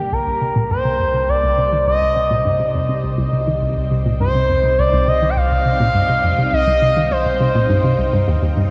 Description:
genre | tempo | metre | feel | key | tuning
ambient, sequencer-driven space music | 103 BPM | 4/4 | straight | C minor | A4 = 440 Hz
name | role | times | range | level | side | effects
expressive portamento lead | melody | 0.0-8.6 s | G4 to G5 | -20 LUFS | equal | chorus, tape echo
phased string machine | sustained chords | 0.0-8.7 s | G3 to G5 | -31 LUFS | equal | ensemble chorus, phaser
hollow square pluck | riff | 0.0-8.6 s | C2 to Eb3 | -22 LUFS | equal | chorus, phaser, tape echo
analog drone | bass | 0.5-8.7 s | C2 | -25 LUFS | equal | chorus
room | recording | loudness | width
wet huge ambient reverb, RT60 9.0 s | cassette tape | -17 LUFS | mono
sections
0.0-8.7 A section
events
fade-in on string machine 0.0-8.7; filter sweep on synth arpeggio sound 0.0-8.7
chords
0.0 Cm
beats
0.12 0.71 1.29 | 1.87 2.45 3.04 3.62 | 4.20 4.78 5.37 5.95 | 6.53 7.11 7.70 8.28

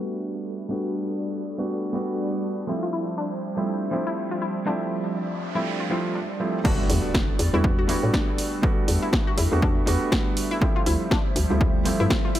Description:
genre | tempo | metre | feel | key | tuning
deep house | 121 BPM | 4/4 | swing 58% on 16ths | unclear | A4 = 443 Hz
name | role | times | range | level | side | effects
hollow soft pad | sustained chords | 0.0-12.4 s | F3 to E5 | -32 LUFS | equal | ensemble chorus, sidechain pumping
felt-muted upright piano | stabs | 0.0-12.4 s | F3 to F#4 | -27 LUFS | right 1 dB | sidechain pumping, low-pass filter, digital delay
analog pluck | arpeggios | 2.8-12.4 s | D4 to F#4 | -32 LUFS | left 3 dB | chorus, sidechain pumping, digital delay
noise sweep and impact | sound effects | 5.0-8.6 s | none | -34 LUFS | right 1 dB | none
electronic kick drum | drums | 6.6-12.2 s | none | -23 LUFS | equal | overdrive
punchy analog drum machine | drums | 6.6-12.4 s | crash cymbal, hi-hat, snare drum | -29 LUFS | equal | overdrive
hollow knocking FM bass | bass | 6.9-12.1 s | D2 to A2 | -24 LUFS | equal | tube saturation, sidechain pumping
room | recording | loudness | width
light reverb, digital ambience | low-pass filter | -22 LUFS | side -12 dB against mid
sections
0.0-6.6 A section; 6.6-12.4 B section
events
filter sweep on analog synth pad 0.0-6.6; filter sweep 0.0-6.6; noise sweep 5.0-6.6; drop 6.6-12.4; impact 6.6-8.6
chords
0.0 Em11; 2.7 Dm11; 6.6 Em11; 10.6 Dm11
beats
0.20 | 0.70 1.19 1.69 2.19 | 2.68 3.18 3.67 4.17 | 4.67 5.16 5.66 6.15 | 6.65 7.14 7.64 8.14 | 8.63 9.13 9.62 10.12 | 10.62 11.11 11.61 12.10

